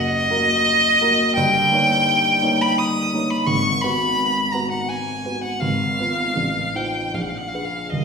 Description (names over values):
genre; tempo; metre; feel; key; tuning
classical, romantic duo for violin and grand piano; 72-87 BPM; 3/4; rubato; Eb minor; A4 = 439 Hz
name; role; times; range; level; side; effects
rich violin; melody; 0.0-8.0 s; Eb5 to Eb6; -18 LUFS; equal; none
dark baby grand piano; accompaniment; 0.0-8.0 s; Eb1 to Db5; -23 LUFS; equal; none
room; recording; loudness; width
wet recital hall reverb, RT60 1.3 s; recorded in a church or concert hall; -17 LUFS; side -5 dB against mid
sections
0.0-8.0 A section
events
none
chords
0.0 Ebm/Gb; 1.4 Eb7/G; 3.5 Abm7; 5.6 Fdim/Ab; 6.4 F7/A; 7.1 Bb7b9